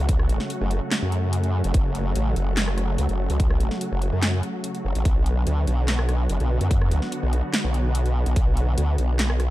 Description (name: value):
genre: heavy wobble dubstep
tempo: 145 BPM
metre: 4/4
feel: half-time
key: F# minor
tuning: A4 = 438 Hz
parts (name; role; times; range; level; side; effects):
- supersaw chords; sustained chords; 0.0-9.5 s; C#3 to F#4; -30 LUFS; equal; sidechain pumping, low-pass filter
- formant-sweep wobble bass; bass; 0.0-9.5 s; F#1 to F#2; -22 LUFS; equal; chorus, overdrive
- big-room dance drum kit; drums; 0.1-9.5 s; handclaps, hi-hat, rim click, snare drum; -28 LUFS; equal; none
- electronic kick drum; drums; 0.1-8.4 s; none; -21 LUFS; equal; none
room: little or no reverb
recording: dark, warm production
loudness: -20 LUFS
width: side -16 dB against mid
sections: 0.0-9.5 A section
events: none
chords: 0.0 F#m; 5.1 Bm